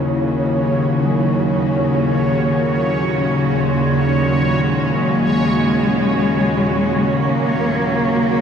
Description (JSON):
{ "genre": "dark ambient drone", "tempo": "free time", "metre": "none", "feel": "none", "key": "unclear", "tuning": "A4 = 440 Hz", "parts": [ { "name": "rich studio cello section", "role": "sustained chords", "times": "0.0-8.4 s", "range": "Bb2 to Gb4", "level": "-23 LUFS", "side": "equal", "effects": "none" }, { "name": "bronze singing bowl", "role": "arpeggios", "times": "0.0-8.4 s", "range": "Gb3 to Fb4", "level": "-25 LUFS", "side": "left 1 dB", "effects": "tape echo" }, { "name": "bowed-like drone", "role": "drone", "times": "0.0-8.4 s", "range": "Eb2 to Db3", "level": "-18 LUFS", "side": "equal", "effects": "built-in reverb" }, { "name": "bubbling stepped-filter texture", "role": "texture", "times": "0.0-8.4 s", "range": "Db5", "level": "-23 LUFS", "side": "right 1 dB", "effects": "chorus, built-in reverb" }, { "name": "dark cello", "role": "melody", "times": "4.6-8.4 s", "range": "Ab3 to Bb3", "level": "-20 LUFS", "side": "equal", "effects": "tape echo" } ], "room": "wet huge ambient reverb, RT60 7.5 s", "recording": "none", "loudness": "-15 LUFS", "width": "side -7 dB against mid", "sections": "0.0-8.4 A section", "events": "fade-in on cello section 0.0-8.4", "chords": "0.0 Gb" }